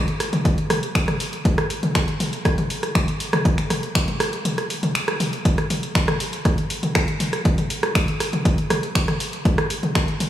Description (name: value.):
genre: techno.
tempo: 120 BPM.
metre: 4/4.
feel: straight.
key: none.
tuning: none.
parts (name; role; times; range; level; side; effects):
punchy analog drum machine; drums; 0.1-10.3 s; finger snaps, hi-hat, rim click, toms; -22 LUFS; equal; none.
electronic kick drum; drums; 0.5-10.1 s; none; -20 LUFS; equal; none.
room: wet cathedral reverb, RT60 4.7 s.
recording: dreamy mix soaked in reverb, studio reverb.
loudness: -19 LUFS.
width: side -12 dB against mid.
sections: 0.0-10.3 A section.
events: kick drops out 4.5-5.5.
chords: none.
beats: 0.45 0.95 | 1.45 1.95 2.45 2.95 | 3.45 3.95 4.45 4.95 | 5.45 5.95 6.45 6.95 | 7.45 7.95 8.45 8.95 | 9.45 9.95.